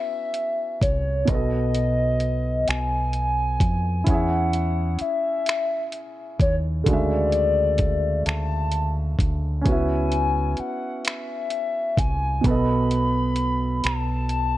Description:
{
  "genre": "slow six-eight R&B",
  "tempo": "43 BPM (dotted quarters)",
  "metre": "6/8",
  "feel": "straight",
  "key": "unclear",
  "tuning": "A4 = 444 Hz",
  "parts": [
    { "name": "hollow clarinet-like synth lead", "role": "melody", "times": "0.0-14.6 s", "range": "C#5 to B5", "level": "-26 LUFS", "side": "left 2 dB", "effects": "chorus, phaser, slapback echo" },
    { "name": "warm concert grand piano", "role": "accompaniment", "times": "0.0-14.6 s", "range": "B2 to E5", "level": "-28 LUFS", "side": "right 2 dB", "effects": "none" },
    { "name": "dusty soul sampler-style drum kit", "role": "drums", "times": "0.3-14.5 s", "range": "finger snaps, hi-hat, kick drum", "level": "-23 LUFS", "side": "equal", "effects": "none" },
    { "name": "deep dub fingered electric bass", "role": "bass", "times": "0.8-14.6 s", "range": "B1 to E#2", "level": "-24 LUFS", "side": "equal", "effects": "none" }
  ],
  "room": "digital ambience",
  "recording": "worn, warbling old tape, cassette tape, warbly pitch drift",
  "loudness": "-20 LUFS",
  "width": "side -15 dB against mid",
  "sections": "0.0-14.6 A section",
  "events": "none",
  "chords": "0.0 C#m7; 1.3 B7; 4.1 E6; 6.9 Dmaj9#11; 9.7 C#m7; 12.4 B7"
}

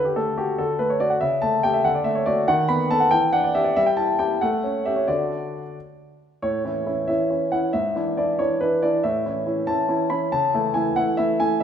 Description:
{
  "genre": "classical-period piano sonatina",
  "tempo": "93 BPM (dotted quarters)",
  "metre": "6/8",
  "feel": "rubato",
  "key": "D major, A major from 6.4 s",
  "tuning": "A4 = 440 Hz",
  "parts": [
    { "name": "warm grand piano", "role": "solo", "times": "0.0-11.6 s", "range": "G#2 to B5", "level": "-19 LUFS", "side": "equal", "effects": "none" }
  ],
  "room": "wet recital hall reverb, RT60 1.6 s",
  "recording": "minimal, uncompressed stereo recording",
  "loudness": "-19 LUFS",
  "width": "side -8 dB against mid",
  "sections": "0.0-6.4 A section; 6.4-11.6 B section",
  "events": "none",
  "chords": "0.0 D; 1.2 A7/C#; 1.8 D; 2.5 B7/D#; 3.1 Em7; 3.8 Em/G; 4.4 A7; 5.1 D; 6.4 A; 7.7 E7/G#; 9.0 A; 10.3 A/C#"
}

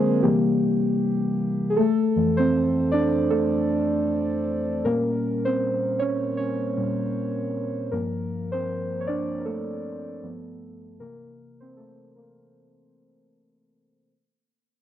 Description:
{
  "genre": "R&B",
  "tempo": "78 BPM",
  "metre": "4/4",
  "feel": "swing 58% on 16ths",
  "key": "F major",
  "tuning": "A4 = 440 Hz",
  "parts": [
    { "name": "muted felt-like synth keys", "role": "solo", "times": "0.0-14.1 s", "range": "F2 to D5", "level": "-22 LUFS", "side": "equal", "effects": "chorus" }
  ],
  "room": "light reverb, digital ambience",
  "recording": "dry, gritty hardware recording, transformer saturation, low-pass filter",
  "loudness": "-22 LUFS",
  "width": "side -10 dB against mid",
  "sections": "0.0-1.8 A section; 1.8-14.1 B section",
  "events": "synth keys solo 0.0-1.8, 1.8-14.1; fade-out 1.8-14.1; filter sweep 1.8-14.1",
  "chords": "0.2 C7; 1.8 Fmaj7; 4.8 Bbm6; 7.9 Gm9; 10.2 G7; 11.0 C6"
}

